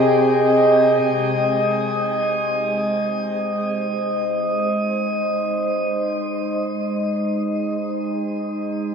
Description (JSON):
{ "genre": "ambient", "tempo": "free time", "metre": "none", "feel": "none", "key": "unclear", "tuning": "A4 = 439 Hz", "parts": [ { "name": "warm flugelhorn", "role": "melody", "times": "0.0-0.8 s", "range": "Ab4", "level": "-24 LUFS", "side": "right 1 dB", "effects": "diffuse ambient delay" }, { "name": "warbly tape-like pad", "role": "sustained chords", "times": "0.0-8.9 s", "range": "C3 to G5", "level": "-20 LUFS", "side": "equal", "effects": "chorus, built-in reverb" } ], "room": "wet shimmer reverb, RT60 8.6 s", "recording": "worn, warbling old tape, cassette tape, warbly pitch drift", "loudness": "-18 LUFS", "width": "side -6 dB against mid", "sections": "0.0-1.0 A section; 1.0-8.9 B section", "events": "filter sweep on ambient pad 1.0-8.9", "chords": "0.0 Cm; 1.0 Ab" }